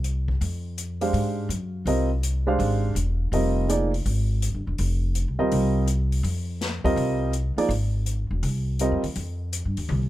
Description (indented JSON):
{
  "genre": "modal jazz",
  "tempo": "164 BPM",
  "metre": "4/4",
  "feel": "swing 66% on 8ths",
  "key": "F dorian",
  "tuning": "A4 = 440 Hz",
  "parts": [
    { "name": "upright bass", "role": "bass", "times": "0.0-10.1 s", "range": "E1 to Ab2", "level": "-24 LUFS", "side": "equal", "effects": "none" },
    { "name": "swinging big-band drum kit", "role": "drums", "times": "0.0-10.0 s", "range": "hi-hat, kick drum, snare drum, toms", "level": "-34 LUFS", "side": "left 3 dB", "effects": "none" },
    { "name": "warm upright piano", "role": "accompaniment", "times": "1.0-9.0 s", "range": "F3 to F5", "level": "-24 LUFS", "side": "right 2 dB", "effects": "none" }
  ],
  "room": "little or no reverb",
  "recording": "none",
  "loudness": "-22 LUFS",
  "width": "side -15 dB against mid",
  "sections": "0.0-10.1 A section",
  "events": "drum fill 9.9",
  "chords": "0.0 Fm11"
}